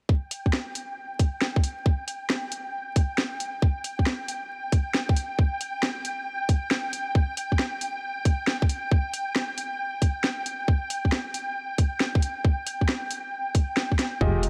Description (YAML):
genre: UK garage, two-step garage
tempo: 136 BPM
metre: 4/4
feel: swing 67% on 16ths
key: unclear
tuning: A4 = 444 Hz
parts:
  - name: soft string machine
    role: sustained chords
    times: 0.1-14.5 s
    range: G5 to Bb5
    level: -35 LUFS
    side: equal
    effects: ensemble chorus, sidechain pumping
  - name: electronic kick drum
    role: drums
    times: 0.1-14.3 s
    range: none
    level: -24 LUFS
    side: equal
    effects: overdrive, cassette tape
  - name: garage drum kit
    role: drums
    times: 0.3-14.5 s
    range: hi-hat, snare drum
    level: -30 LUFS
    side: equal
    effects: overdrive, cassette tape
  - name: warm grand piano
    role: stabs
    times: 14.2-14.4 s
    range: Ab3 to Eb5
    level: -28 LUFS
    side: equal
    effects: tape echo
  - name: deep soft wobble bass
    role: bass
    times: 14.2-14.5 s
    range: F1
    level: -27 LUFS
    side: equal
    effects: chorus, sidechain pumping
room: light reverb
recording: home recording on cassette, vinyl crackle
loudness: -27 LUFS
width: mono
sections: 0.1-14.5 A section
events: drum fill 14.0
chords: none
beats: | 0.09 0.53 0.97 1.42 | 1.86 2.30 2.74 3.18 | 3.62 4.06 4.50 4.95 | 5.39 5.83 6.27 6.71 | 7.15 7.59 8.03 8.47 | 8.91 9.36 9.80 10.24 | 10.68 11.12 11.56 12.00 | 12.45 12.89 13.33 13.77 | 14.21